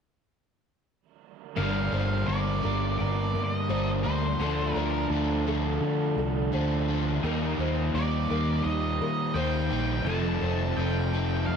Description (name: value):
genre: rock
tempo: 85 BPM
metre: 4/4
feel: straight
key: G minor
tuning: A4 = 440 Hz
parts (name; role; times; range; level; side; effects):
- octave-fuzz lead guitar; melody; 1.6-11.6 s; C5 to A5; -34 LUFS; right 2 dB; distortion, analog delay
- fingerpicked twelve-string acoustic guitar; arpeggios; 1.6-11.6 s; A4 to C5; -36 LUFS; left 2 dB; lush chorus, analog delay
- crunchy overdriven guitar; riff; 1.6-11.6 s; G2 to Bb4; -34 LUFS; right 12 dB; reverse reverb
- crunchy overdriven guitar; riff; 1.6-11.6 s; F2 to Eb4; -32 LUFS; equal; none
- overdriven semi-hollow guitar; riff; 1.6-11.6 s; F2 to Eb4; -33 LUFS; left 10 dB; wide subtle chorus
- fingered electric bass; bass; 1.6-11.6 s; F1 to Eb3; -29 LUFS; equal; none
room: light reverb, digital ambience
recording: none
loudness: -25 LUFS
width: side -7 dB against mid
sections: 1.6-11.6 A section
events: none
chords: 1.6 Gm7; 4.4 Dm7; 7.2 Ebmaj7; 10.1 F7